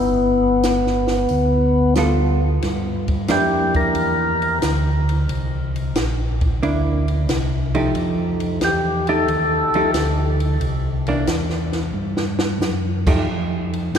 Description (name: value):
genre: soul jazz organ trio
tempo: 90 BPM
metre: 4/4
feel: swing 69% on 8ths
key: C mixolydian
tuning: A4 = 440 Hz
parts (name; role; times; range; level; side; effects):
- percussive tonewheel organ; melody; 0.0-4.6, 8.6-9.9, 14.0 s; B3 to Bb4; -20 LUFS; left 2 dB; slow rotary speaker
- mellow tonewheel organ; bass; 0.0-14.0 s; G1 to G2; -21 LUFS; equal; chorus vibrato, slow rotary speaker
- compact cocktail drum kit; drums; 0.6-14.0 s; crash cymbal, hi-hat, kick drum, ride cymbal, snare drum; -25 LUFS; equal; none
- hollow-body jazz guitar; accompaniment; 2.0-13.3 s; E3 to A4; -24 LUFS; right 2 dB; none
room: wet cathedral reverb, RT60 4.2 s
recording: recorded in a church or concert hall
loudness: -17 LUFS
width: side -8 dB against mid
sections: 0.0-2.6 A section; 2.6-14.0 B section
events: tonewheel organ solo 2.6-14.0; drum fill 11.9-12.6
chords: 0.0 G9; 2.6 C9; 7.9 F9; 10.6 C; 13.3 N.C.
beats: 0.64 1.30 1.97 | 2.63 3.29 3.96 4.62 | 5.29 5.95 6.62 7.28 | 7.95 8.61 9.28 9.95 | 10.61 11.28 11.94 12.61 | 13.27 13.94